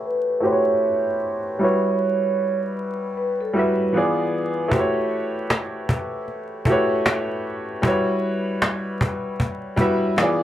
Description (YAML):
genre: lo-fi hip hop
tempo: 77 BPM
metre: 4/4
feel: swing 59% on 16ths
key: E dorian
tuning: A4 = 439 Hz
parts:
  - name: clear upright piano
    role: accompaniment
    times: 0.0-10.4 s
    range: E3 to E5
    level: -21 LUFS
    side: equal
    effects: cassette tape, low-pass filter, plate reverb
  - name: vibraphone with soft mallets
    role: melody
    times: 0.1-4.7 s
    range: A4 to C#5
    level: -24 LUFS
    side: moving between left 4 dB and right 8 dB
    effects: auto-pan, low-pass filter, plate reverb
  - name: cajon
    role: drums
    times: 4.7-10.4 s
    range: none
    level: -22 LUFS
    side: equal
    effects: none
room: moderate small room reverb, RT60 0.5 s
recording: vinyl crackle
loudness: -20 LUFS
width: side -12 dB against mid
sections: 0.0-10.4 A section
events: filter sweep 0.0-10.4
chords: 0.0 A13; 1.6 Em69/G; 3.9 E7b9; 4.7 A13; 7.8 Em69/G